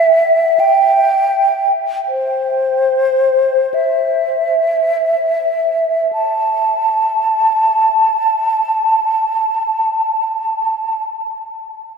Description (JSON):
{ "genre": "classical, free, expressive piece for unaccompanied flute", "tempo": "free time", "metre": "none", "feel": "none", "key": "A minor", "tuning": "A4 = 441 Hz", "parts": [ { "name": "mellow hollow concert flute", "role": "solo", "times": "0.0-11.0 s", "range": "C5 to A5", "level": "-13 LUFS", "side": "equal", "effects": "none" } ], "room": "wet cathedral reverb, RT60 5.9 s", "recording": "minimal, uncompressed stereo recording", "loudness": "-13 LUFS", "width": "side -5 dB against mid", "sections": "0.0-6.1 A section; 6.1-12.0 B section", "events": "slowing down 0.0-6.1", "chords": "none" }